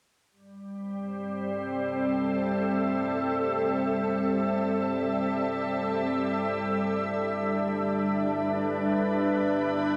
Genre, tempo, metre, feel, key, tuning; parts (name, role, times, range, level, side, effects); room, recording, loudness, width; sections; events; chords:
ambient; free time; A4 = 444 Hz
soft additive organ-like pad; sustained chords; 0.6-10.0 s; G3 to E5; -28 LUFS; equal; ensemble chorus, built-in reverb
wet plate reverb, RT60 2.8 s; dreamy mix soaked in reverb; -28 LUFS; mono
0.3-10.0 A section
0.3 Am7; 6.4 Em7